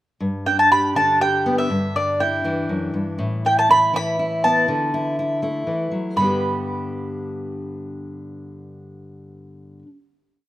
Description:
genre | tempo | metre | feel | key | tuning
indie folk with a building arrangement | 121 BPM | 3/4 | straight | G major | A4 = 440 Hz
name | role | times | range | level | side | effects
fingerpicked steel-string acoustic guitar | accompaniment | 0.2-9.9 s | F#2 to G4 | -24 LUFS | left 1 dB | none
mandolin | melody | 0.5-9.8 s | D5 to B5 | -18 LUFS | right 1 dB | none
room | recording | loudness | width
light reverb, small room ambience | rough home demo mix | -18 LUFS | side -14 dB against mid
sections
0.2-6.2 verse; 6.2-9.1 final chord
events
none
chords
0.2 G; 1.7 Em9; 3.2 Asus2; 4.7 Dadd9; 6.2 G

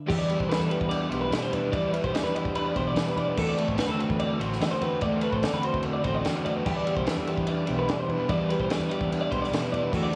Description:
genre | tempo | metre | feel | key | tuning
math rock and midwest emo | 146 BPM | 4/4 | straight | E minor | A4 = 440 Hz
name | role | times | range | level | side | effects
mellow electric guitar | accompaniment | 0.0-10.2 s | E2 to A4 | -32 LUFS | equal | plate reverb
twelve-string electric guitar | arpeggios | 0.1-10.2 s | G4 to D5 | -32 LUFS | equal | tape echo, plate reverb
crunchy overdriven guitar | riff | 0.1-10.2 s | D3 to F#4 | -35 LUFS | equal | none
growling fingered electric bass | bass | 0.1-10.2 s | A1 to E2 | -36 LUFS | equal | overdrive
compact cocktail drum kit | drums | 0.1-10.2 s | crash cymbal, kick drum, ride cymbal, snare drum | -35 LUFS | equal | none
room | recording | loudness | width
moderate studio reverb, RT60 0.8 s | worn, warbling old tape, cassette tape, warbly pitch drift, studio reverb | -27 LUFS | mono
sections
0.1-10.2 A section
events
none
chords
0.1 Em7; 3.4 D9; 6.7 Em7

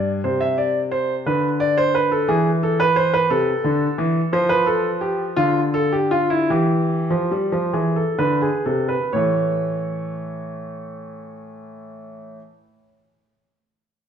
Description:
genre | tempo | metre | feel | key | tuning
classical, baroque-style two-part invention for grand piano | 41-59 BPM (dotted quarters) | 6/8 | straight | unclear | A4 = 440 Hz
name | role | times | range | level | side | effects
warm concert grand piano | solo | 0.0-12.4 s | G2 to E5 | -18 LUFS | equal | none
room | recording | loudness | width
moderate recital hall reverb, RT60 1.6 s | none | -18 LUFS | side -8 dB against mid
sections
0.2-9.1 A section; 9.1-14.1 B section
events
slowing down 3.3-9.1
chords
0.2 Cadd9; 1.3 Bm7/D; 2.3 E; 3.3 Am/C; 4.3 F; 5.4 Dmadd9; 6.5 Em; 7.7 E7; 9.1 A

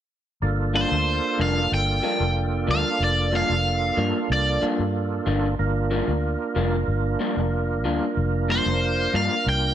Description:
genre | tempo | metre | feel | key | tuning
blues | 93 BPM | 4/4 | straight | G minor | A4 = 441 Hz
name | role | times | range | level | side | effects
overdriven tonewheel organ | accompaniment | 0.4-9.7 s | Bb3 to Bb4 | -27 LUFS | right 5 dB | slow rotary speaker, chorus vibrato
vintage muted fingered electric bass | bass | 0.4-9.7 s | F1 to G2 | -25 LUFS | left 1 dB | none
electric guitar through a small old amp | stabs | 0.7-9.3 s | G2 to D4 | -29 LUFS | left 3 dB | none
cranked stack guitar | melody | 0.8-4.6, 8.5-9.7 s | C5 to G5 | -24 LUFS | equal | overdrive
room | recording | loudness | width
light reverb | none | -21 LUFS | side -10 dB against mid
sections
0.4-9.7 A section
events
none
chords
0.4 Gm7

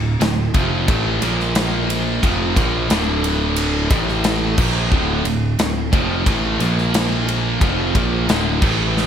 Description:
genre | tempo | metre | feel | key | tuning
hard rock | 89 BPM | 4/4 | straight | D minor | A4 = 440 Hz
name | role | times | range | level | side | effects
high-gain distorted guitar | riff | 0.0-9.1 s | D2 to Bb3 | -24 LUFS | left 11 dB | distortion
high-gain distorted guitar | riff | 0.0-9.1 s | D2 to Bb3 | -23 LUFS | right 10 dB | distortion
overdriven electric guitar | riff | 0.0-9.1 s | D2 to Bb3 | -24 LUFS | equal | spring reverb
modern bright picked electric bass | bass | 0.0-9.1 s | D1 to Bb1 | -23 LUFS | equal | none
big rock drum kit | drums | 0.2-9.1 s | crash cymbal, kick drum, ride cymbal, snare drum | -20 LUFS | equal | none
room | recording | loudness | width
light reverb | none | -16 LUFS | side -8 dB against mid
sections
0.0-9.1 A section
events
none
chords
0.0 Dm; 1.2 Bb5; 2.2 Dm; 3.9 A5; 4.6 Dm; 6.6 Bb5; 7.6 Dm

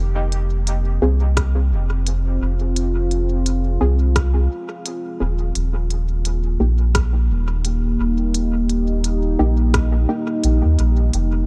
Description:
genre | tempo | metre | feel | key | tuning
ambient dub | 86 BPM | 4/4 | swing 59% on 16ths | unclear | A4 = 440 Hz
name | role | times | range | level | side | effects
deep dark ambient pad | sustained chords | 0.0-11.5 s | Bb3 to Ab4 | -28 LUFS | equal | chorus, built-in reverb
soft dub sub bass | bass | 0.0-11.5 s | Eb1 to Eb2 | -20 LUFS | equal | tube saturation
organic electronic drum kit | drums | 0.3-11.3 s | hi-hat, rim click | -29 LUFS | equal | small room ambience, dub echo
filtered dub chord stab | stabs | 1.0-10.3 s | Bb3 to Ab4 | -29 LUFS | equal | chorus, dub echo
electronic kick drum | drums | 1.4-9.9 s | none | -25 LUFS | equal | small room ambience
room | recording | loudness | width
digital ambience | none | -19 LUFS | mono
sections
0.0-11.5 A section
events
filter sweep on synth stab 0.0-11.5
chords
0.0 Fm; 5.6 Eb

